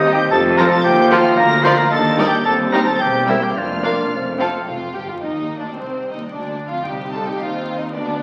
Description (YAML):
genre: quick classical-period movement for symphony orchestra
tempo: 110 BPM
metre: 2/4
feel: straight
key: unclear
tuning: A4 = 440 Hz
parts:
  - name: clear studio violin section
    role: melody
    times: 0.0-8.2 s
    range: C5 to C7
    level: -30 LUFS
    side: equal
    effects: none
  - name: dark clarinet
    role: second line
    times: 0.0-4.4 s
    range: C5 to F5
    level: -25 LUFS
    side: equal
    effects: none
  - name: mellow hollow silver concert flute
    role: second line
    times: 0.0-4.4 s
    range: Eb5 to C6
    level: -23 LUFS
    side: equal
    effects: none
  - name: warm oboe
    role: second line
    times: 0.0-4.4 s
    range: Eb4 to C5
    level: -22 LUFS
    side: equal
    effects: none
  - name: mellow French horn section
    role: sustained chords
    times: 0.0-4.4 s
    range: G3 to G4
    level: -23 LUFS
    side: equal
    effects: none
  - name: clear studio cello section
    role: bass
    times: 0.0-8.2 s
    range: C2 to C3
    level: -28 LUFS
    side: equal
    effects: none
  - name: rich studio double bass section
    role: bass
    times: 0.0-8.2 s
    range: E1 to Eb2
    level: -32 LUFS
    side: equal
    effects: none
  - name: rich studio violin section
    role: second line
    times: 0.1-8.2 s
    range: C4 to F5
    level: -29 LUFS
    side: equal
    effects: none
  - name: rich studio viola section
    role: accompaniment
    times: 0.1-8.2 s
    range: F3 to G4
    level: -26 LUFS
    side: equal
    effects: none
  - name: timpani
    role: percussion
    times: 0.3-0.8, 3.6-4.1 s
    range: F2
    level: -36 LUFS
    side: equal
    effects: none
room: wet scoring stage reverb, RT60 1.8 s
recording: very old 78 rpm record, vinyl crackle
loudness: -17 LUFS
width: mono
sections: 0.0-4.7 A section; 4.7-8.2 A section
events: none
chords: 0.3 F; 0.8 F7/Eb; 1.4 Bb/D; 1.9 Ebmaj7; 2.5 Cm/Eb; 3.0 C7/E; 3.6 Bb/F; 4.1 F; 4.7 Ebmaj9/F; 5.8 Cm; 6.3 Dm; 6.9 Cm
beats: | 0.31 0.84 | 1.38 1.91 | 2.46 3.01 | 3.57 4.13 | 4.68 5.23 | 5.77 6.31 | 6.86 7.40 | 7.94